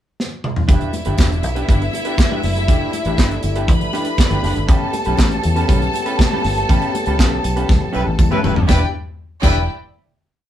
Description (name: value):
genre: disco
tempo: 120 BPM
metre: 4/4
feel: straight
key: E dorian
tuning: A4 = 440 Hz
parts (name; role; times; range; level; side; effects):
- modern studio drum kit; drums; 0.2-9.5 s; crash cymbal, handclaps, hi-hat, kick drum, snare drum, toms; -16 LUFS; equal; none
- clear studio string section; second line; 0.7-9.7 s; E4 to B5; -24 LUFS; equal; slapback echo
- electric guitar through a small old amp; accompaniment; 0.7-9.6 s; C#4 to B4; -25 LUFS; right 1 dB; none
- mellow French horn section; sustained chords; 0.7-8.9 s; C#3 to G4; -27 LUFS; left 3 dB; none
- fingered electric bass; bass; 0.7-9.7 s; E1 to E2; -20 LUFS; equal; none
- congas; percussion; 0.7-9.7 s; none; -30 LUFS; left 4 dB; none
- tambourine; percussion; 0.7-9.7 s; none; -38 LUFS; left 4 dB; none
- mellow horn section; stabs; 7.9-9.6 s; G3 to B4; -24 LUFS; equal; none
room: moderate studio reverb, RT60 0.5 s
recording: band playing live in one room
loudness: -15 LUFS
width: side -11 dB against mid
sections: 0.0-0.7 pickup bar; 0.7-8.7 groove; 8.7-10.5 final chord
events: drum fill 0.2-0.7, 7.7-8.7; band accent 6.7-8.7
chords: 0.0 N.C.; 0.7 Em7; 4.7 A9; 8.7 Em7